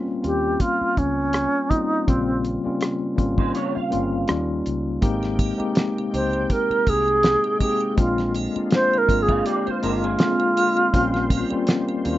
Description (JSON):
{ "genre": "lush 1970s-style soul", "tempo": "81 BPM", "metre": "4/4", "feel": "swing 54% on 16ths", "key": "unclear", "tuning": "A4 = 440 Hz", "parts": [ { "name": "mellow tine electric piano", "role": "accompaniment", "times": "0.0-12.2 s", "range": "Db3 to G4", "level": "-24 LUFS", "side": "left 2 dB", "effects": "fast stereo tremolo" }, { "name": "vintage muted fingered electric bass", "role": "bass", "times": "0.2-12.2 s", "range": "G1 to Eb2", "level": "-29 LUFS", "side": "equal", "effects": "none" }, { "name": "cloth-damped thuddy drum kit", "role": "drums", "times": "0.2-12.2 s", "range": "hi-hat, kick drum, rim click, snare drum", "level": "-21 LUFS", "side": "equal", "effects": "none" }, { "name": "wooden-headed alto flute", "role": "melody", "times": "0.3-11.8 s", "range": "C4 to C5", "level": "-21 LUFS", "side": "right 1 dB", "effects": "none" }, { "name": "electric guitar through a small old amp", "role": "riff", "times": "3.4-4.3, 9.3-10.9 s", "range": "C4 to F5", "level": "-28 LUFS", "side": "right 5 dB", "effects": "ensemble chorus" }, { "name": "bright tonewheel organ", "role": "sustained chords", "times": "5.0-12.2 s", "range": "C3 to G5", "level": "-37 LUFS", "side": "right 1 dB", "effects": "fast rotary speaker, chorus vibrato" }, { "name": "triangle", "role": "percussion", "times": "5.0-12.2 s", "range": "none", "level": "-38 LUFS", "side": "right 9 dB", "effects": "none" } ], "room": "light reverb", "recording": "rough home demo mix, nothing above 7.6 kHz", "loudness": "-19 LUFS", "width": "side -14 dB against mid", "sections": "0.0-12.2 A section", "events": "alto flute solo 0.0-12.2", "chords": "0.0 Eb13 (rootless); 4.3 Eb7; 5.0 Abmaj9; 8.0 Bb7; 10.9 Eb13/Bb", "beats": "0.60 1.34 | 2.08 2.82 3.56 4.29 | 5.03 5.77 6.51 7.25 | 7.99 8.73 9.46 10.20 | 10.94 11.68" }